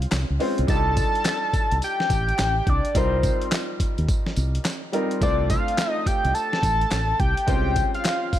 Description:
R&B, new jack swing; 106 BPM; 4/4; swing 64% on 16ths; A4 = 439 Hz
clear concert grand piano; accompaniment; 0.0-8.4 s; G3 to C5; -29 LUFS; equal
fingered electric bass; bass; 0.0-8.4 s; A1 to Eb2; -24 LUFS; equal
dusty soul sampler-style drum kit; drums; 0.0-8.4 s; handclaps, hi-hat, kick drum, snare drum, tambourine; -25 LUFS; equal
group handclap; percussion; 0.1-8.2 s; -41 LUFS; left 8 dB
fat analog lead; melody; 0.7-8.4 s; C5 to A5; -24 LUFS; left 1 dB; chorus
digital ambience; -20 LUFS; side -12 dB against mid
0.0-8.4 A section
break 0.0-0.7
0.0 Dbmaj7/C; 0.7 F13/C; 2.9 Eb69/C; 5.2 Dm7/C; 7.5 Dbmaj7/C
0.12 | 0.69 1.25 1.82 2.38 | 2.95 3.52 4.08 4.65 | 5.21 5.78 6.34 6.91 | 7.48 8.04

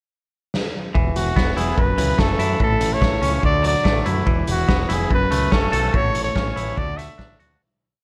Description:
indie rock; 144 BPM; 4/4; straight; A4 = 441 Hz
raw garage drum kit; drums; 0.5-7.5 s; hi-hat, kick drum, snare drum; -24 LUFS; equal
twangy electric guitar; riff; 0.9-7.6 s; F#2 to A4; -27 LUFS; equal
growling picked electric bass; bass; 1.0-7.6 s; E1 to F#2; -26 LUFS; equal; overdrive
clear trumpet; melody; 1.2-7.4 s; F#4 to E5; -25 LUFS; equal; analog delay
light reverb, studio reverb; -20 LUFS; mono
0.0-0.9 pickup bar; 0.9-7.6 interlude
drum fill 0.5-0.9; fade-out 5.9-7.6
0.0 N.C.; 0.9 Esus2; 1.8 F#m7; 2.6 A; 3.4 Dadd9; 4.3 Esus2; 5.1 F#m; 5.9 A; 6.8 Dadd9
0.12 0.54 | 0.95 1.36 1.77 2.19 | 2.60 3.02 3.43 3.85 | 4.27 4.68 5.10 5.52 | 5.94 6.36 6.77 7.19

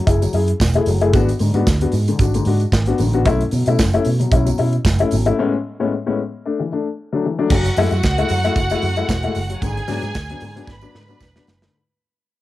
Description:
disco; 113 BPM; 4/4; straight; A4 = 441 Hz
dark baby grand piano; accompaniment; 0.0-11.7 s; G#2 to G#4; -20 LUFS; left 4 dB; cassette tape
picked electric bass with an envelope filter; bass; 0.1-11.7 s; E1 to B2; -19 LUFS; right 1 dB
modern studio drum kit; drums; 0.1-11.7 s; crash cymbal, hi-hat, kick drum, snare drum; -21 LUFS; right 1 dB; cassette tape
tambourine; percussion; 0.1-11.6 s; -37 LUFS; right 10 dB
rich studio violin section; second line; 7.5-11.7 s; F#4 to B5; -25 LUFS; right 1 dB; cassette tape
little or no reverb; home recording on cassette; -16 LUFS; side -15 dB against mid
0.0-7.5 A section; 7.5-11.7 B section
break 5.4-7.5; fade-out 7.5-11.7; drum fill 10.7-11.7
0.0 F#m9; 1.1 G#m7b5; 3.3 B7sus4; 5.4 Amaj9; 6.4 E9sus4; 7.5 F#m9; 9.6 G#m7b5
0.07 0.60 | 1.13 1.66 2.19 2.73 | 3.26 3.79 4.32 4.85 | 5.38 5.91 6.44 6.97 | 7.50 8.03 8.56 9.09 | 9.62 10.15 10.68 11.21

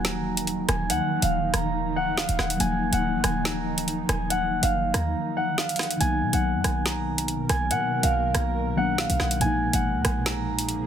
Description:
hip hop, drill; 141 BPM; 4/4; half-time; Eb minor; A4 = 440 Hz
concert harp; melody; 0.0-10.9 s; Gb4 to Bb5; -27 LUFS; equal; low-pass filter, digital delay
muted felt-like synth keys; accompaniment; 0.0-10.9 s; Bb2 to Eb4; -30 LUFS; left 2 dB; chorus, low-pass filter
granular cloud pad; sustained chords; 0.0-10.9 s; B2 to A#4; -32 LUFS; right 2 dB; built-in reverb
short 808-style bass; bass; 0.0-10.9 s; D1 to B2; -29 LUFS; equal
drill drum kit; drums; 0.0-10.8 s; hi-hat, rim click, snare drum; -27 LUFS; right 1 dB
little or no reverb; dense, heavily limited modern master; -22 LUFS; side -9 dB against mid
0.0-10.9 A section
break 5.2-6.0
0.0 Ebmadd9; 6.0 Bmaj7; 9.4 Bb7sus4
0.05 0.47 | 0.90 1.32 1.75 2.17 | 2.60 3.03 3.45 3.88 | 4.30 4.73 5.15 5.58 | 6.00 6.43 6.86 7.28 | 7.71 8.13 8.56 8.98 | 9.41 9.84 10.26 10.69

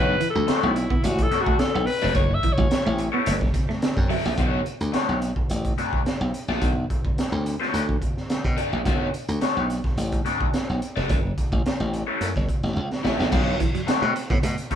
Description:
funk; 108 BPM; 4/4; straight; B minor; A4 = 440 Hz
growling alto saxophone; melody; 0.0-3.1 s; E4 to E5; -25 LUFS; left 2 dB
raw garage guitar; accompaniment; 0.0-14.8 s; A3 to E5; -27 LUFS; left 3 dB; overdrive, phaser
glassy slap bass; bass; 0.0-14.7 s; E#1 to B2; -26 LUFS; equal
electric guitar at the edge of break-up; riff; 0.1-4.2, 13.5-14.7 s; E3 to B3; -30 LUFS; right 4 dB; spring reverb
crunchy breakbeat drum kit; drums; 0.2-14.8 s; crash cymbal, hi-hat, kick drum, snare drum; -24 LUFS; equal
light reverb; band playing live in one room; -21 LUFS; side -9 dB against mid
0.0-4.4 A section; 4.4-13.3 B section; 13.3-14.8 C section
alto saxophone solo 0.0-4.4; drum fill 12.8-13.3
0.0 Bm9; 2.1 F#m7; 4.4 Bm9; 11.1 F#m7; 13.3 Bm9
0.48 1.04 1.59 | 2.15 2.71 3.26 3.82 | 4.38 4.94 5.50 6.06 | 6.62 7.18 7.74 8.29 | 8.85 9.41 9.97 10.53 | 11.09 11.65 12.21 12.77 | 13.32 13.88 14.44

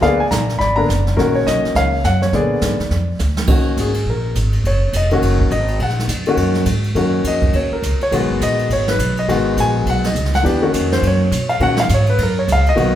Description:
jazz piano trio; 207 BPM; 4/4; swing 61% on 8ths; Eb minor; A4 = 439 Hz
warm baby grand piano; melody; 0.0-13.0 s; D3 to Cb6; -17 LUFS; left 2 dB
upright bass; bass; 0.0-13.0 s; F1 to Cb3; -18 LUFS; right 1 dB
jazz brush drum kit; drums; 0.0-12.9 s; brushed snare drum, crash cymbal, hi-hat, kick drum, ride cymbal, snare drum; -23 LUFS; right 2 dB
moderate large studio reverb, RT60 1.3 s; band playing live in one room; -14 LUFS; side -11 dB against mid
0.0-3.5 A section; 3.5-13.0 B section
drum fill 3.2; grand piano solo 3.5-13.0
0.0 Bb7b9; 1.2 Ebm7; 2.3 Bb7b9; 3.5 Ebm7; 8.1 Abm7; 10.5 Ebm7
| 0.02 0.31 0.60 0.89 | 1.18 1.47 1.75 2.04 | 2.33 2.62 2.91 3.20 | 3.48 3.77 4.06 4.35 | 4.64 4.93 5.22 5.51 | 5.80 6.09 6.38 6.67 | 6.96 7.25 7.54 7.83 | 8.12 8.41 8.70 8.99 | 9.29 9.58 9.87 10.16 | 10.45 10.74 11.03 11.32 | 11.62 11.91 12.20 12.49 | 12.78

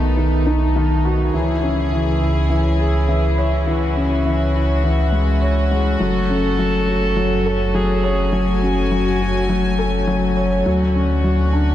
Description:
electronica; 103 BPM; 4/4; straight; F# minor; A4 = 440 Hz
rich studio string section; sustained chords; 0.0-11.7 s; C#3 to G#5; -24 LUFS; equal
felt-muted upright piano; riff; 0.0-11.7 s; D#3 to C#5; -20 LUFS; left 2 dB; tape echo
dark detuned saw bass; bass; 0.0-11.7 s; F#1 to D2; -19 LUFS; equal
dark viola; melody; 6.0-10.4 s; F#4 to A4; -24 LUFS; right 2 dB; tape echo
moderate huge ambient reverb, RT60 6.0 s; dark, warm production; -16 LUFS; side -12 dB against mid
0.0-11.7 A section
0.0 B7; 1.3 C#m; 6.0 F#m; 10.7 Dmaj7
0.17 0.76 | 1.34 1.92 2.50 3.09 | 3.67 4.25 4.83 5.42 | 6.00 6.58 7.17 7.75 | 8.33 8.91 9.49 10.08 | 10.66 11.24

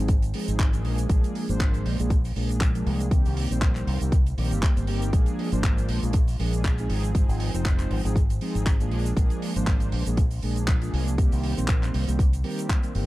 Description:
nu-disco, nu disco; 119 BPM; 4/4; swing 55% on 16ths; Bb mixolydian; A4 = 440 Hz
mellow synth brass; accompaniment; 0.0-13.1 s; Eb3 to C5; -30 LUFS; right 1 dB; chorus, sidechain pumping, tape echo
fingered electric bass with an envelope filter; bass; 0.0-13.1 s; F1 to C2; -26 LUFS; equal
damped 70s drum kit; drums; 0.1-13.1 s; handclaps, hi-hat, shaker; -34 LUFS; right 1 dB; small room ambience
electronic kick drum; drums; 0.1-12.8 s; -22 LUFS; equal; small room ambience
little or no reverb; dark, warm production; -22 LUFS; side -17 dB against mid
0.0-13.1 A section
0.0 Ab6; 0.8 Bb7; 3.1 Cm7; 5.1 Bb7; 6.9 Ab6; 8.9 Bb7; 11.2 Cm7
0.09 0.59 | 1.10 1.60 2.11 2.61 | 3.12 3.62 4.12 4.63 | 5.13 5.64 6.14 6.64 | 7.15 7.65 8.16 8.66 | 9.16 9.67 10.17 10.68 | 11.18 11.69 12.19 12.69

